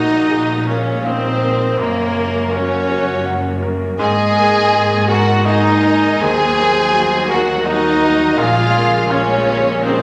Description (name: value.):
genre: cinematic.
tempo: 82 BPM.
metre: 3/4.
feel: rubato.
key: Ab mixolydian.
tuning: A4 = 440 Hz.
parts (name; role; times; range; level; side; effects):
rich studio violin section; melody; 0.0-10.0 s; Bb3 to Ab4; -22 LUFS; equal; none.
concert flute; second line; 0.0-10.0 s; Db4 to Eb5; -25 LUFS; equal; none.
rich studio violin section; second line; 0.0-10.0 s; Bb4 to Ab5; -25 LUFS; equal; none.
warm cor anglais; second line; 0.0-10.0 s; Bb3 to Ab4; -24 LUFS; equal; none.
felt-muted upright piano; accompaniment; 0.0-10.0 s; Eb2 to Gb5; -25 LUFS; equal; none.
rich studio viola section; accompaniment; 0.0-10.0 s; Db3 to Bb3; -29 LUFS; equal; none.
mellow French horn section; sustained chords; 0.0-10.0 s; Bb3 to Ab4; -25 LUFS; equal; none.
clear studio cello section; bass; 0.0-10.0 s; Eb2 to Bb2; -25 LUFS; equal; none.
rich studio double bass section; bass; 0.0-10.0 s; Gb1 to Eb2; -28 LUFS; equal; none.
room: wet recital hall reverb, RT60 1.4 s.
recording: none.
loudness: -15 LUFS.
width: mono.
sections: 0.0-10.0 A section.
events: none.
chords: 0.0 Bb5; 1.8 Gb; 4.0 Absus2; 6.2 Ebm; 8.4 Bbm7.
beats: 0.32 1.06 | 1.80 2.53 3.25 | 3.99 4.72 5.45 | 6.20 6.93 7.66 | 8.38 9.11 9.86.